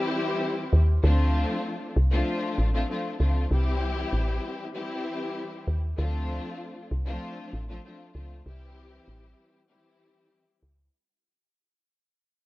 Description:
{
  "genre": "hip hop, boom-bap hip-hop",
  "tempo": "97 BPM",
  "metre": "4/4",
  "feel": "swing 56% on 16ths",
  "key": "D minor",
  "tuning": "A4 = 440 Hz",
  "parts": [
    { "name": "dark studio string section", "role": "accompaniment", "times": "0.0-10.7 s", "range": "E3 to G4", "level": "-30 LUFS", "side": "left 2 dB", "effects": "high-pass filter, low-pass filter" },
    { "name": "woody FM bass", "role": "bass", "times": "0.7-10.9 s", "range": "A1 to Eb2", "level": "-24 LUFS", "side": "equal", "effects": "none" }
  ],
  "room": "small room ambience",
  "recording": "none",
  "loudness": "-25 LUFS",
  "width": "side -18 dB against mid",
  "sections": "0.0-1.0 A section; 1.0-10.9 B section",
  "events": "fade-out 1.0-10.9",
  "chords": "0.0 C; 1.0 Dm7; 3.5 C; 6.0 Dm7; 8.5 C"
}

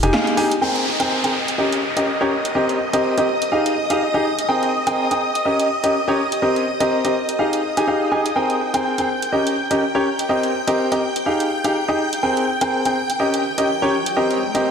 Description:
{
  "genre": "piano house",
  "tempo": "124 BPM",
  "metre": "4/4",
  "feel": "swing 58% on 16ths",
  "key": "Ab major",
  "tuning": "A4 = 440 Hz",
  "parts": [
    { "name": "bright baby grand piano", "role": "riff", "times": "0.0-14.7 s", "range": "C4 to Ab5", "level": "-18 LUFS", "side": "equal", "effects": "low-pass filter, tape echo" },
    { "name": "punchy analog drum machine", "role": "drums", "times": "0.0-14.6 s", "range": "hi-hat, snare drum", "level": "-26 LUFS", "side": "right 1 dB", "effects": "none" },
    { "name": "string machine, violins", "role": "sustained chords", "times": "0.6-14.7 s", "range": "Eb5 to G6", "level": "-24 LUFS", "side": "equal", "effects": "ensemble chorus" },
    { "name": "downlifter and riser", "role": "sound effects", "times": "0.6-4.5, 12.9-14.7 s", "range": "none", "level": "-27 LUFS", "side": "equal", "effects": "none" }
  ],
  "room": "wet lush hall reverb, RT60 2.1 s",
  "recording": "dreamy mix soaked in reverb",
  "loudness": "-17 LUFS",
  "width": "side -6 dB against mid",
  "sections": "0.6-14.7 A section",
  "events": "band accent 0.1; riser 12.9-14.7",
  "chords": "0.0 Fm9; 0.6 Abmaj9; 1.3 Eb7; 2.6 Cm7; 3.3 Fm9; 4.5 Abmaj9; 5.2 Eb7; 6.4 Cm7; 7.1 Fm9; 8.4 Abmaj9; 9.1 Eb7; 10.3 Cm7; 11.0 Fm9; 12.2 Abmaj9; 13.0 Eb7; 14.2 Cm7"
}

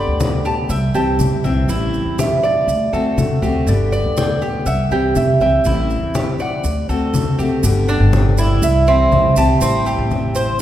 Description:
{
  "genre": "latin, Cuban son and guajira",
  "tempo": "121 BPM",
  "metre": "4/4",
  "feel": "straight",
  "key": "G major",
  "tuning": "A4 = 441 Hz",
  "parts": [
    { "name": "concert harp", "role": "melody", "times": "0.0-10.6 s", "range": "D5 to B5", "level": "-20 LUFS", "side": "right 2 dB", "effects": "none" },
    { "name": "picked steel-string acoustic guitar", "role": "accompaniment", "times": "0.0-10.6 s", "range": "B2 to G4", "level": "-22 LUFS", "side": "left 3 dB", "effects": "none" },
    { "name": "Cuban tres", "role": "arpeggios", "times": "0.0-10.6 s", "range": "C4 to E5", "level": "-22 LUFS", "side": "right 2 dB", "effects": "none" },
    { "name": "upright bass", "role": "bass", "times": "0.0-10.6 s", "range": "G1 to D3", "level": "-18 LUFS", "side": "equal", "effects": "none" },
    { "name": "congas", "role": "percussion", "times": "0.2-10.6 s", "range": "none", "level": "-23 LUFS", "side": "left 2 dB", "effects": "none" },
    { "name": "maracas", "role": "percussion", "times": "0.2-10.6 s", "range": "none", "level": "-32 LUFS", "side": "right 5 dB", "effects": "none" }
  ],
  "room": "wet scoring stage reverb, RT60 1.9 s",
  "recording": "recorded in a church or concert hall",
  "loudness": "-14 LUFS",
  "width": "side -12 dB against mid",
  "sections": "0.0-7.6 A section; 7.6-10.6 B section",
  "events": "none",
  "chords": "0.0 G; 0.7 C; 1.7 Am7; 2.7 D7; 3.7 G; 4.7 C; 5.7 Am7; 6.6 D7; 7.6 G; 8.6 C; 9.6 Am7"
}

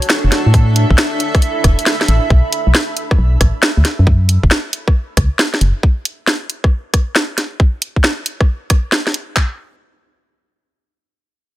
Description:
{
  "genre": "UK garage, two-step garage",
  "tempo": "136 BPM",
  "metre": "4/4",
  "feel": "swing 66% on 16ths",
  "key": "unclear",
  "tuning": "A4 = 440 Hz",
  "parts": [
    { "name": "garage drum kit", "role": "drums", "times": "0.0-9.3 s", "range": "hi-hat, rim click, snare drum", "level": "-16 LUFS", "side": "equal", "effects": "none" },
    { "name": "granular cloud pad", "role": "texture", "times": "0.0-2.3 s", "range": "D4 to B5", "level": "-21 LUFS", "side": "right 2 dB", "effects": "built-in reverb, sidechain pumping" },
    { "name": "organ-like FM bass", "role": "bass", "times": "0.2-5.7 s", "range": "E1 to A2", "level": "-12 LUFS", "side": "equal", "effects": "none" },
    { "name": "garage drum kit", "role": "drums", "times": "0.5-9.5 s", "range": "handclaps, kick drum", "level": "-13 LUFS", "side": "equal", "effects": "none" }
  ],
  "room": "little or no reverb",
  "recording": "none",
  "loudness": "-12 LUFS",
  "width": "side -15 dB against mid",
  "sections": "0.0-9.4 A section; 9.4-11.6 B section",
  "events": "none",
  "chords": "0.3 Asus2; 2.3 B7(no3); 3.8 F#5; 5.8 N.C."
}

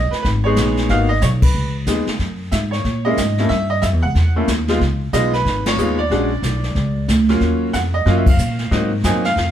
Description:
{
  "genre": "jazz piano trio",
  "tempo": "184 BPM",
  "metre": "4/4",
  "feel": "swing 62% on 8ths",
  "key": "Db mixolydian",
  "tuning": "A4 = 438 Hz",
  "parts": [
    { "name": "bright upright piano", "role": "melody", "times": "0.0-9.5 s", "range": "F#3 to Ab5", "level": "-20 LUFS", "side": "equal", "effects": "none" },
    { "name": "upright bass", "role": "bass", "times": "0.0-9.5 s", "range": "Ab1 to Bb2", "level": "-18 LUFS", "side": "equal", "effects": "none" },
    { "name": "jazz brush drum kit", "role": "drums", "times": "0.1-9.5 s", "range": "brushed snare drum, crash cymbal, hi-hat, kick drum, ride cymbal, snare drum", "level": "-21 LUFS", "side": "equal", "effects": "none" }
  ],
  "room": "moderate studio reverb, RT60 0.7 s",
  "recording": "band playing live in one room",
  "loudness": "-15 LUFS",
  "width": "side -10 dB against mid",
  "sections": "0.0-9.5 A section",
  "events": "band accent 1.4, 5.6, 8.2",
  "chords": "0.0 Db7sus2; 0.9 Abm7; 1.5 Dbsus2; 2.2 Gbadd9; 3.5 G5; 4.8 Db9; 6.1 Bbaug; 7.4 Ebm7; 8.7 Ab9"
}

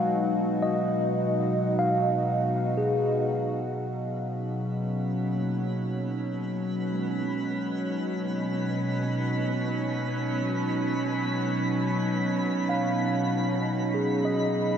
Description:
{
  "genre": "ambient",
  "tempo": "free time",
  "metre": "none",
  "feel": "none",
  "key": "B lydian",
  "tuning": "A4 = 440 Hz",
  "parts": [
    { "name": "evolving wavetable pad", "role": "sustained chords", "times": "0.0-14.8 s", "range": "B2 to F#4", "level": "-27 LUFS", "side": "equal", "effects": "chorus, built-in reverb" },
    { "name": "mellow tine electric piano", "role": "arpeggios", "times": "0.0-14.8 s", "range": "G#3 to E#5", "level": "-31 LUFS", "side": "equal", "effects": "medium stereo tremolo, diffuse ambient delay" },
    { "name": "overtone-sweeping drone", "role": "drone", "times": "0.0-3.7 s", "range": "B2 to F#4", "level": "-34 LUFS", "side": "right 2 dB", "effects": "chorus, built-in reverb" },
    { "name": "twinkling granular texture", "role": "texture", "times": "5.1-14.8 s", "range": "B3 to B5", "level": "-35 LUFS", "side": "left 1 dB", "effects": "built-in reverb" }
  ],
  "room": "wet lush hall reverb, RT60 2.5 s",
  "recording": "nothing above 7.8 kHz",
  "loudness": "-25 LUFS",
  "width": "side -8 dB against mid",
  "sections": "0.0-3.6 A section; 3.6-14.8 B section",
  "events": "fade-in on tine electric piano 3.6-14.8; fade-in on synth texture 3.6-14.8",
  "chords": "0.0 B; 3.6 Bmaj9#11"
}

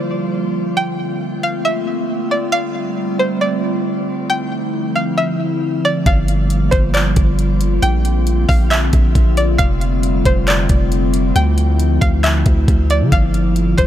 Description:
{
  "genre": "hip hop, atmospheric cloud-rap",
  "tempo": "136 BPM",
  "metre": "4/4",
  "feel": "half-time",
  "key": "D minor",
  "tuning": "A4 = 435 Hz",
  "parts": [
    { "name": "string-like resonator pluck", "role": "melody", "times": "0.0-13.9 s", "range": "C5 to G5", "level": "-21 LUFS", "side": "equal", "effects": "chorus, tape echo" },
    { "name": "warbly tape-like pad", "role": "sustained chords", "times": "0.0-13.9 s", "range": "D3 to F4", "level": "-20 LUFS", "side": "equal", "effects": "chorus, built-in reverb, sidechain pumping" },
    { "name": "long sustained 808-style bass", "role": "bass", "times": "6.1-13.9 s", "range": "F1 to D3", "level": "-16 LUFS", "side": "equal", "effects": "none" },
    { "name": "smooth R&B drum kit", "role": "drums", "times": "6.1-13.9 s", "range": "handclaps, hi-hat, kick drum", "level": "-16 LUFS", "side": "equal", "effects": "none" }
  ],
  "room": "light reverb, digital ambience",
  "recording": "none",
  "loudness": "-14 LUFS",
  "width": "side -11 dB against mid",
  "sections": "0.0-13.9 A section",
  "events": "none",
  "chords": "0.0 Gm7; 0.8 Bbmaj9; 2.5 F69; 4.3 Dm9; 6.1 Gm7; 7.8 Bbmaj9; 9.6 F69; 11.4 Dm9; 13.1 Gm7"
}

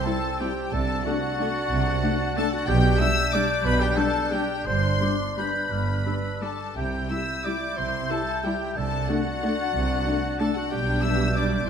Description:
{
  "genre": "classical, orchestral ballroom waltz",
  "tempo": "163-201 BPM",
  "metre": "3/4",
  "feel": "rubato",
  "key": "unclear",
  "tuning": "A4 = 440 Hz",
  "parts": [
    { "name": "clear studio violin section", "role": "melody", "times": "0.0-11.7 s", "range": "F#5 to E6", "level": "-33 LUFS", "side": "left 7 dB", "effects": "none" },
    { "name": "clear clarinet", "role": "second line", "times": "0.0-11.7 s", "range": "F#4 to E5", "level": "-34 LUFS", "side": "left 2 dB", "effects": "none" },
    { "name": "clear oboe", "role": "second line", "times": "0.0-11.7 s", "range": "F#4 to E5", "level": "-34 LUFS", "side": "right 1 dB", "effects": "none" },
    { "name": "clear studio violin section", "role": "second line", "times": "0.0-11.7 s", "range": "F#5 to E6", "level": "-36 LUFS", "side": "left 4 dB", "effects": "none" },
    { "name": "mellow hollow silver concert flute", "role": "second line", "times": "0.0-11.7 s", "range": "D6 to A6", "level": "-33 LUFS", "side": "equal", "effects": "none" },
    { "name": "warm bassoon", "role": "accompaniment", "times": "0.0-11.7 s", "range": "C4 to E4", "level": "-32 LUFS", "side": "equal", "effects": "none" },
    { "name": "rich studio viola section", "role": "accompaniment", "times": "0.1-11.7 s", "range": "G3 to E4", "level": "-32 LUFS", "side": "equal", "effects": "none" },
    { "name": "mellow French horn section", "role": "sustained chords", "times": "0.1-11.5 s", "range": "G3 to E4", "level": "-32 LUFS", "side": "left 6 dB", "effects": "none" },
    { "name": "rich chamber double bass section", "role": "bass", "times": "0.7-11.7 s", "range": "G1 to C2", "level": "-28 LUFS", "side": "right 3 dB", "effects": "none" },
    { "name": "rich studio cello section", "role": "bass", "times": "0.7-11.6 s", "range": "G2 to C3", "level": "-31 LUFS", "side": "right 3 dB", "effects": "none" }
  ],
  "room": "moderate scoring stage reverb, RT60 2.0 s",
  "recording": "none",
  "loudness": "-22 LUFS",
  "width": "side -7 dB against mid",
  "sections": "0.0-11.7 A section",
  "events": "none",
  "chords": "0.0 C; 0.7 D7/C; 2.7 G/B; 4.7 G; 6.8 C; 8.8 D7/C; 10.7 G/B"
}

